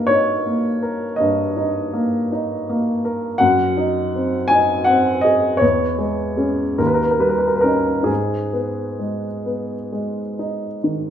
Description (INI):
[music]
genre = classical, romantic nocturne for solo piano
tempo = 43-56 BPM (dotted quarters)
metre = 12/8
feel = rubato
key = G# minor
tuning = A4 = 441 Hz
[part]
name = warm upright piano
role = solo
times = 0.0-11.1 s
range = D#2 to G#5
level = -17 LUFS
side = equal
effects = none
[sound]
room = moderate recital hall reverb, RT60 1.4 s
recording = none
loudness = -17 LUFS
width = side -9 dB against mid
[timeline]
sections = 0.0-11.1 A section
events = none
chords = 0.0 D#/G; 3.4 G#7/F#; 5.6 C#m/E; 6.8 D#7; 8.1 G#m